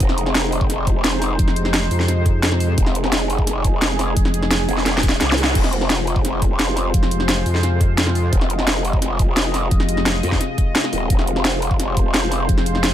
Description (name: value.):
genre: dark technical drum and bass.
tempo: 173 BPM.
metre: 4/4.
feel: straight.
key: F minor.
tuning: A4 = 441 Hz.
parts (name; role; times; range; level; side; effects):
sweeping resonant pad; sustained chords; 0.0-12.9 s; C3 to Eb5; -24 LUFS; equal; chorus, sidechain pumping.
growl bass; bass; 0.0-12.5 s; Eb1 to F2; -21 LUFS; equal; chorus, overdrive, sidechain pumping.
drum and bass drum kit; drums; 0.0-12.9 s; crash cymbal, hi-hat, snare drum; -21 LUFS; equal; overdrive.
electronic kick drum; drums; 0.0-12.6 s; none; -18 LUFS; equal; none.
metallic wobble bass; bass; 1.4-4.7, 6.9-10.2, 12.5-12.9 s; F1 to F2; -20 LUFS; equal; chorus.
zap; sound effects; 5.3-5.4 s; none; -25 LUFS; equal; none.
room: digital ambience.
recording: none.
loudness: -16 LUFS.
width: side -11 dB against mid.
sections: 0.0-5.6 A section; 5.6-12.9 A section.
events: drop 0.0-5.6, 5.6-12.9; drum fill 4.9-5.6.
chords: 0.0 Fm.